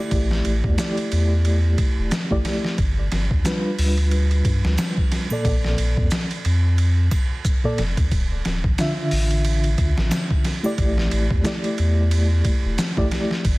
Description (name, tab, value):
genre	trip hop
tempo	90 BPM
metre	4/4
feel	swing 57% on 16ths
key	unclear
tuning	A4 = 440 Hz
part	mellow reed electric piano	accompaniment	0.0-13.4 s	Bb2 to E5	-25 LUFS	equal	medium tremolo, vintage 12-bit sampler grit, tape echo
part	warm sub bass	bass	0.1-13.6 s	D1 to G2	-20 LUFS	equal	none
part	trip hop sampler-style drum kit	drums	0.1-13.6 s	hi-hat, kick drum, ride cymbal, snare drum	-23 LUFS	equal	overdrive, studio reverb
part	maracas and triangle	percussion	0.8-12.9 s	none	-39 LUFS	right 2 dB	none
room	digital ambience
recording	dense, heavily limited modern master, vinyl crackle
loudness	-18 LUFS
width	side -22 dB against mid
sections	0.0-13.6 A section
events	none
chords	0.1 A7sus4; 2.8 G7; 5.5 Bbmaj7; 8.1 Dmadd9; 10.8 A7sus4